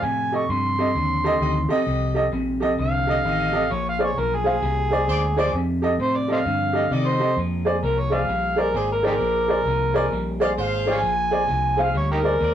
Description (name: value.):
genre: blues.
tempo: 131 BPM.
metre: 4/4.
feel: swing 64% on 8ths.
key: Bb mixolydian.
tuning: A4 = 440 Hz.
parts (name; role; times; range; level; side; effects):
overdriven harmonica; second line; 0.0-12.5 s; Eb4 to Db6; -23 LUFS; equal; none.
electric guitar at the edge of break-up; riff; 0.0-12.5 s; F2 to Ab3; -28 LUFS; left 2 dB; none.
vintage muted fingered electric bass; bass; 0.0-12.5 s; Ab1 to C3; -26 LUFS; equal; none.
warm upright piano; accompaniment; 0.3-12.3 s; G4 to F5; -23 LUFS; right 1 dB; none.
warm horn section; stabs; 1.4-12.5 s; G4 to F5; -28 LUFS; equal; none.
room: moderate studio reverb, RT60 0.5 s.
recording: rough rehearsal-room recording, warm saturation.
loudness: -19 LUFS.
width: side -10 dB against mid.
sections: 0.0-7.4 A section; 7.4-12.5 A section.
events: harmonica solo 0.0-12.5.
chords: 0.0 F9; 3.7 Bb9; 5.5 F9; 7.4 Bb9.